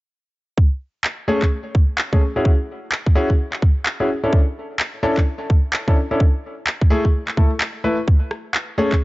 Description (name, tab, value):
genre	UK garage, two-step garage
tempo	128 BPM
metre	4/4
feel	swing 62% on 16ths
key	A major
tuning	A4 = 442 Hz
part	electronic kick drum	drums	0.6-9.0 s	none	-15 LUFS	equal	none
part	electronic handclaps and rim click	drums	1.0-9.0 s	none	-22 LUFS	equal	none
part	warm grand piano	stabs	1.3-8.9 s	A3 to B4	-21 LUFS	left 1 dB	low-pass filter, tape echo
room	small room reverb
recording	dry, gritty hardware recording, nothing above 7.7 kHz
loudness	-17 LUFS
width	side -20 dB against mid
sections	0.6-9.0 A section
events	none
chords	0.6 Amaj7; 2.2 C#madd11; 4.1 C#m; 6.2 A5; 8.1 Amaj7